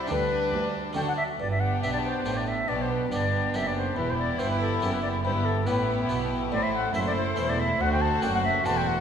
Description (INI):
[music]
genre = classical, baroque-style concerto movement with solo episodes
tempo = 140 BPM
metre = 3/4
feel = straight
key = G major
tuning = A4 = 442 Hz
[part]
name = warm chamber violin section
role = melody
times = 0.0-9.0 s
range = G4 to C5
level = -37 LUFS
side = left 6 dB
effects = none
[part]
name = warm chamber violin section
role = second line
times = 0.0-9.0 s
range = D4 to F#4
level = -32 LUFS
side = left 3 dB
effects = none
[part]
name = harpsichord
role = accompaniment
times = 0.0-9.0 s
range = D2 to D5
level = -34 LUFS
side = right 2 dB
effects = none
[part]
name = warm chamber viola section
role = accompaniment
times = 0.0-9.0 s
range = F#3 to B3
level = -34 LUFS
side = right 2 dB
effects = none
[part]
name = rich studio double bass section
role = bass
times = 0.0-9.0 s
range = E1 to D2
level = -33 LUFS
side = right 3 dB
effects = none
[part]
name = warm chamber cello section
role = bass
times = 0.0-9.0 s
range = D2 to D3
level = -32 LUFS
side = right 3 dB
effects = none
[part]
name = silver concert flute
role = melody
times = 0.1-9.0 s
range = A4 to A5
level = -29 LUFS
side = left 2 dB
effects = none
[sound]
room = moderate concert hall reverb, RT60 2.3 s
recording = minimal, uncompressed stereo recording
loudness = -24 LUFS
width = side -8 dB against mid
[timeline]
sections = 0.0-1.4 A section; 1.4-9.0 A section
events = none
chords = 0.1 G/D; 1.0 D; 1.4 G; 4.0 Em; 5.2 Em/G; 6.5 Am; 7.8 D7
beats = | 0.10 0.53 0.97 | 1.40 1.83 2.26 | 2.69 3.12 3.54 | 3.97 4.40 4.82 | 5.25 5.67 6.10 | 6.52 6.95 7.38 | 7.80 8.23 8.66